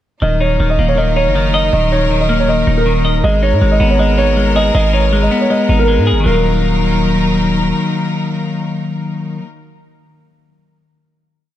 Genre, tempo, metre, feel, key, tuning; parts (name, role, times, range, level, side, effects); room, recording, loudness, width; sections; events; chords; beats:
hip hop, trap; 159 BPM; 4/4; half-time; Eb minor; A4 = 439 Hz
dark concert grand piano; melody; 0.2-7.3 s; Bb4 to Eb5; -17 LUFS; right 2 dB; low-pass filter, digital delay
clean electric guitar; accompaniment; 0.2-9.5 s; Eb3 to Eb5; -17 LUFS; left 3 dB; low-pass filter
clear studio string section; sustained chords; 0.2-9.4 s; Gb3 to Bb4; -21 LUFS; left 1 dB
distorted 808-style bass; bass; 0.2-7.7 s; Eb1 to Ab2; -15 LUFS; equal; distortion
light reverb, small room reverb; -12 LUFS; side -12 dB against mid
0.2-6.3 breakdown; 6.3-9.3 final chord
0.2 Ebm; 3.2 Abmadd9; 6.3 Ebm
| 0.22 0.60 0.97 1.35 | 1.73 2.11 2.48 2.86 | 3.24 3.62 3.99 4.37 | 4.75 5.13 5.50 5.88 | 6.26 6.64 7.01 7.39 | 7.77 8.14 8.52 8.90